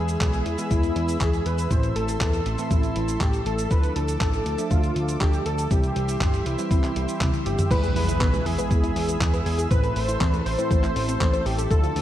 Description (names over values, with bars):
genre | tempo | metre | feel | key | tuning
italo disco | 120 BPM | 4/4 | straight | A minor | A4 = 442 Hz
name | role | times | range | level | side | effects
wide unison lead | melody | 0.0-12.0 s | E4 to C5 | -28 LUFS | equal | digital delay
lush unison pad | sustained chords | 0.0-12.0 s | G4 to E6 | -34 LUFS | left 1 dB | chorus
bell-like tine electric piano | stabs | 0.0-12.0 s | A2 to E5 | -31 LUFS | right 2 dB | lush chorus
fat analog bass | bass | 0.0-12.0 s | G1 to E2 | -27 LUFS | equal | none
dusty soul sampler-style drum kit | drums | 0.1-12.0 s | cabasa, crash cymbal, handclaps, hi-hat, toms | -32 LUFS | equal | none
electronic kick drum | drums | 0.2-11.8 s | none | -23 LUFS | equal | none
soft round pluck | arpeggios | 7.7-12.0 s | G#3 to C5 | -33 LUFS | left 5 dB | chorus, vintage 12-bit sampler grit, ping-pong delay
impact | sound effects | 7.8-9.7 s | none | -31 LUFS | equal | none
room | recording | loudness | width
light reverb, digital ambience | dark, warm production | -21 LUFS | side -12 dB against mid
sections
0.0-7.7 A section; 7.7-12.0 B section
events
drum fill 7.2-7.7; impact 7.7-9.7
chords
0.0 E; 1.7 Am; 3.7 Dmadd9; 5.7 C; 7.7 E; 9.7 Am